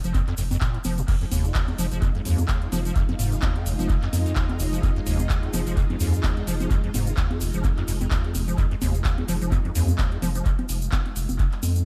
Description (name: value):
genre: acid house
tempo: 128 BPM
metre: 4/4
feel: swing 56% on 16ths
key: F minor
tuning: A4 = 440 Hz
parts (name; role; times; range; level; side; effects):
- acid bass, square; riff; 0.0-10.4 s; Eb2 to F3; -30 LUFS; equal; tube saturation, ensemble chorus, sidechain pumping, analog delay
- saturated sub bass; bass; 0.0-11.8 s; F1 to F2; -28 LUFS; equal; sidechain pumping
- booming analog drum machine; drums; 0.0-11.8 s; congas, crash cymbal, handclaps, hi-hat; -35 LUFS; equal; tape echo
- tube shaker; percussion; 0.0-11.8 s; none; -40 LUFS; equal; none
- electronic kick drum; drums; 0.1-11.5 s; none; -26 LUFS; equal; none
- string machine, full ensemble; sustained chords; 1.1-11.8 s; Ab3 to F4; -36 LUFS; equal; ensemble chorus, sidechain pumping
room: light reverb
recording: echo-heavy mix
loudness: -24 LUFS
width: mono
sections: 0.0-11.8 A section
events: none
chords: 0.0 Fm7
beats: 0.14 0.61 | 1.08 1.55 2.02 2.49 | 2.96 3.43 3.90 4.36 | 4.83 5.30 5.77 6.24 | 6.71 7.18 7.64 8.11 | 8.58 9.05 9.52 9.99 | 10.46 10.93 11.39